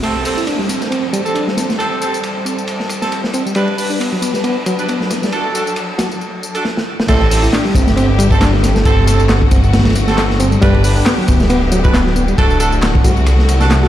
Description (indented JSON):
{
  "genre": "breakbeat, breaks",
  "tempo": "136 BPM",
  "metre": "4/4",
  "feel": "swing 56% on 16ths",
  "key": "A dorian",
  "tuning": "A4 = 441 Hz",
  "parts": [
    { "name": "rich studio string section", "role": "sustained chords", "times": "0.0-13.9 s", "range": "C3 to B4", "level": "-22 LUFS", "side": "left 2 dB", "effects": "sidechain pumping" },
    { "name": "bright reed electric piano", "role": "riff", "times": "0.0-13.9 s", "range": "F#3 to F#4", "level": "-19 LUFS", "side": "equal", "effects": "tube saturation, low-pass filter, tape echo" },
    { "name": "warm horn section", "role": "stabs", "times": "0.0-13.9 s", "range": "C4 to B4", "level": "-21 LUFS", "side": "right 3 dB", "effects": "tape echo" },
    { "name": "crunchy breakbeat drum kit", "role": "drums", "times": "0.0-13.9 s", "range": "crash cymbal, hi-hat, kick drum, ride cymbal, snare drum", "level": "-17 LUFS", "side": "equal", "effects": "high-pass filter on kick, high-pass filter on cymbals, high-pass filter on hats, high-pass filter on snare, high-pass filter on room" },
    { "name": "electronic tambourine and handclaps", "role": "drums", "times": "0.0-13.8 s", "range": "none", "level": "-26 LUFS", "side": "left 1 dB", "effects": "none" },
    { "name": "downlifter", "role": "sound effects", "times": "0.0-3.6 s", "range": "none", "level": "-27 LUFS", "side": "right 2 dB", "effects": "none" },
    { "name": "detuned saw bass", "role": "bass", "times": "7.1-13.9 s", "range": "D1 to C2", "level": "-14 LUFS", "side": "equal", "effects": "none" }
  ],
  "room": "light reverb, small room ambience",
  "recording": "played on a big sound system in a bare room, large studio reverb",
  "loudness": "-12 LUFS",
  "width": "side -12 dB against mid",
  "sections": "0.0-7.1 A section; 7.1-13.9 B section",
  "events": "drum fill 6.6-7.1; drop 7.1-13.9",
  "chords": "0.0 Am7; 3.6 G; 5.3 D; 7.1 Am7; 10.6 G; 12.4 D"
}